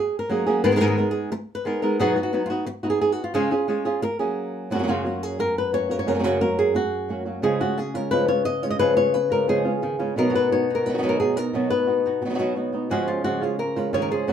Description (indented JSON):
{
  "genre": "flamenco",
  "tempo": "176 BPM",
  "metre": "4/4",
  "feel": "straight",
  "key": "F# major",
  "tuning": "A4 = 440 Hz",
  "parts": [
    { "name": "flamenco guitar", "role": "melody", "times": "0.0-14.3 s", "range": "F#2 to D#5", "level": "-22 LUFS", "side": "left 1 dB", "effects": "none" },
    { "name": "flamenco guitar", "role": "stabs", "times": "4.7-14.3 s", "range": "F#2 to F#4", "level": "-25 LUFS", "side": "right 2 dB", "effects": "none" }
  ],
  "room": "wet studio ambience, RT60 0.5 s",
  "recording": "band playing live in one room",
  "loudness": "-20 LUFS",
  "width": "side -8 dB against mid",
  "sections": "0.0-4.7 A section; 4.7-14.3 B section",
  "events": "none",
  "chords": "0.0 F#add9; 0.6 G#madd9; 2.0 B; 3.4 C#; 4.0 F#add9; 4.7 F#; 7.4 C#; 10.2 B; 12.9 C#"
}